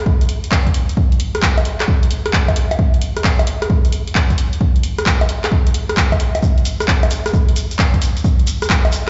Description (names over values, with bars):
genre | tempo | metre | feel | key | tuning
UK garage | 132 BPM | 4/4 | swing 66% on 16ths | none | none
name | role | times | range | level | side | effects
electronic kick drum | drums | 0.1-8.8 s | none | -17 LUFS | equal | none
punchy analog drum machine | drums | 0.2-9.0 s | bongos, handclaps, hi-hat, rim click | -22 LUFS | equal | none
shekere | percussion | 6.4-9.0 s | none | -32 LUFS | equal | none
room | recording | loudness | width
light reverb | played on a big sound system in a bare room, large studio reverb, nothing above 7.8 kHz | -16 LUFS | mono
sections
0.0-9.1 A section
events
none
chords
none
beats
0.06 0.52 | 0.97 1.43 1.88 2.33 | 2.79 3.24 3.70 4.15 | 4.61 5.06 5.52 5.97 | 6.42 6.88 7.33 7.79 | 8.24 8.70